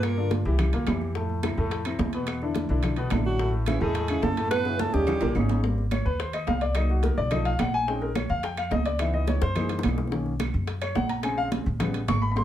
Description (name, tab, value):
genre	Afro-Cuban jazz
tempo	214 BPM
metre	4/4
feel	straight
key	unclear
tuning	A4 = 444 Hz
part	clear alto saxophone	melody	0.0-0.3, 3.3-5.4 s	E4 to B4	-29 LUFS	right 2 dB	none
part	breathy trombone	second line	0.0-0.3, 3.3-5.4 s	E3 to B3	-34 LUFS	right 3 dB	none
part	warm baby grand piano	accompaniment	0.0-12.4 s	A2 to C#6	-28 LUFS	left 2 dB	none
part	upright bass	bass	0.0-12.4 s	G#1 to G2	-27 LUFS	equal	none
part	bongos	percussion	0.0-12.4 s	none	-36 LUFS	left 8 dB	none
part	claves	percussion	0.0-12.2 s	none	-42 LUFS	right 3 dB	none
part	congas	percussion	0.0-12.4 s	none	-32 LUFS	right 3 dB	none
part	timbales	percussion	0.0-12.2 s	none	-35 LUFS	right 4 dB	none
room	wet club reverb, RT60 0.5 s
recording	heard from further back in the room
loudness	-23 LUFS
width	side -11 dB against mid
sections	0.0-5.6 A section; 5.6-12.4 B section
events	drum fill 4.5-5.6, 9.4-10.1; grand piano solo 5.6-12.4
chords	0.0 C9; 1.2 Fmaj7; 2.3 E5; 3.4 Amaj7; 4.5 F#m7; 5.1 D#7; 5.6 Abmaj9; 6.8 Cm7b5; 7.3 B7#11; 7.9 Bbm11; 9.0 Dbm7; 9.6 Gb13; 10.1 Bmaj9; 11.2 Bbm7; 11.8 A9